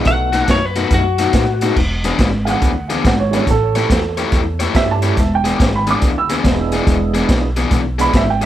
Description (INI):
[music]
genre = electric blues shuffle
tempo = 141 BPM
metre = 4/4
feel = swing 65% on 8ths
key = E mixolydian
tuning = A4 = 441 Hz
[part]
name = tonewheel organ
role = accompaniment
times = 0.0-8.1 s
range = G3 to A4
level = -23 LUFS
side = right 8 dB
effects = slow rotary speaker, overdrive, chorus vibrato
[part]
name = raw garage guitar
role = riff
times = 0.0-8.5 s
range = B2 to C#5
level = -20 LUFS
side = left 5 dB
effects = overdrive
[part]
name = lightly driven lead guitar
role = melody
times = 0.1-1.8 s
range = F#4 to F#5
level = -18 LUFS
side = left 4 dB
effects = plate reverb
[part]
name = upright bass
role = bass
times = 0.1-8.5 s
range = E1 to A2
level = -19 LUFS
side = equal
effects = none
[part]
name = crunchy breakbeat drum kit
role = drums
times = 0.1-8.5 s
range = crash cymbal, hi-hat, kick drum, snare drum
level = -18 LUFS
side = equal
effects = none
[part]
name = dark upright piano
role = second line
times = 2.5-8.4 s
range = A4 to E6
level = -20 LUFS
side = right 6 dB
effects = plate reverb, analog delay
[sound]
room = light reverb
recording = none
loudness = -13 LUFS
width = side -12 dB against mid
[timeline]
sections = 0.0-1.8 A section; 1.8-8.5 B section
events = upright piano solo 1.8-8.5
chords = 0.1 B7; 1.8 E7; 3.5 A7; 5.2 E7